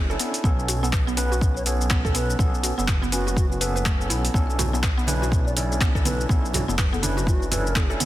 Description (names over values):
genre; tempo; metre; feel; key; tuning
afro house; 123 BPM; 4/4; swing 60% on 16ths; B minor; A4 = 437 Hz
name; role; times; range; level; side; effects
hollow bansuri; melody; 0.0-7.9 s; F#4 to D5; -34 LUFS; left 1 dB; vintage 12-bit sampler grit, ping-pong delay
mallet-like synth pluck; arpeggios; 0.0-8.1 s; A3 to B4; -32 LUFS; right 1 dB; chorus, cassette tape, sidechain pumping, ping-pong delay
overdriven tine electric piano; stabs; 0.0-8.1 s; B3 to B4; -29 LUFS; right 1 dB; fast tremolo, sidechain pumping, ping-pong delay
dark detuned saw bass; bass; 0.0-8.0 s; F#1 to B1; -26 LUFS; equal; tube saturation, sidechain pumping
deep house drum kit; drums; 0.1-8.1 s; finger snaps, handclaps, hi-hat, shaker; -28 LUFS; left 1 dB; soft clipping on snare
electronic kick drum; drums; 0.4-7.9 s; none; -22 LUFS; equal; none
congas; percussion; 4.4-8.1 s; none; -31 LUFS; right 2 dB; none
room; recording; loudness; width
light reverb; dense, heavily limited modern master; -20 LUFS; side -15 dB against mid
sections
0.0-8.1 A section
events
none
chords
0.4 Aadd9/B; 4.3 Bm11